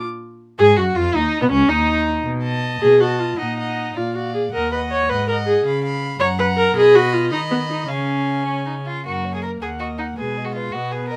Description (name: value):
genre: quick classical-period movement for string quartet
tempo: 107 BPM (dotted quarters)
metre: 6/8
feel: straight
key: F# major from 4.5 s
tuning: A4 = 440 Hz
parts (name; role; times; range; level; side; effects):
- dark violin; melody; 0.0-11.2 s; B3 to B5; -30 LUFS; equal; none
- warm viola; accompaniment; 0.0-11.2 s; G#3 to C#5; -21 LUFS; equal; none
- rich violin; second line; 0.6-11.2 s; B3 to F#5; -28 LUFS; equal; none
- dark cello; bass; 0.6-11.2 s; C#2 to D#3; -27 LUFS; equal; none
room: moderate studio ambience, RT60 0.5 s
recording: none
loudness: -19 LUFS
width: mono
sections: 0.0-9.1 A section; 9.1-11.2 B section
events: none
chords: 0.0 N.C.; 0.6 Fm; 1.1 Badd9 (rootless); 2.2 B7; 3.4 Ebm/Bb; 4.0 Bb; 4.5 D#m; 5.1 G#5; 5.7 C#7; 6.2 F#; 6.8 B; 7.9 C#; 9.1 F#; 9.6 D#m; 10.2 G#m/B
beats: | 0.03 0.60 | 1.15 1.70 | 2.25 2.81 | 3.38 3.95 | 4.53 5.10 | 5.66 6.21 | 6.77 7.33 | 7.90 8.47 | 9.06 9.62 | 10.18 10.74